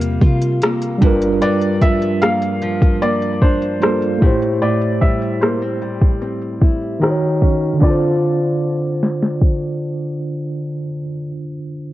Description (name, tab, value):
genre	contemporary R&B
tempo	75 BPM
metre	4/4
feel	straight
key	D minor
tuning	A4 = 440 Hz
part	bright baby grand piano	melody	0.0-10.9 s	C5 to F5	-24 LUFS	right 1 dB	cassette tape, analog delay
part	mellow tine electric piano	accompaniment	0.0-11.9 s	C3 to Db5	-19 LUFS	right 1 dB	medium stereo tremolo, cassette tape
part	nylon-string guitar	arpeggios	0.0-11.4 s	G2 to A4	-22 LUFS	left 2 dB	cassette tape, analog delay
part	clean 808-style bass	bass	0.0-1.4 s	G1 to C3	-20 LUFS	equal	none
part	smooth R&B drum kit	drums	0.0-9.6 s	crash cymbal, hi-hat, kick drum, rim click, snare drum	-15 LUFS	equal	overdrive
room	little or no reverb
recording	home recording on cassette, low-pass filter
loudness	-15 LUFS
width	side -15 dB against mid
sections	0.0-7.8 A section; 7.8-11.0 B section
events	filter sweep 0.0-7.8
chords	0.0 C7sus4; 1.0 Gm7; 4.2 Am7; 7.0 Ebm7; 7.8 Dm7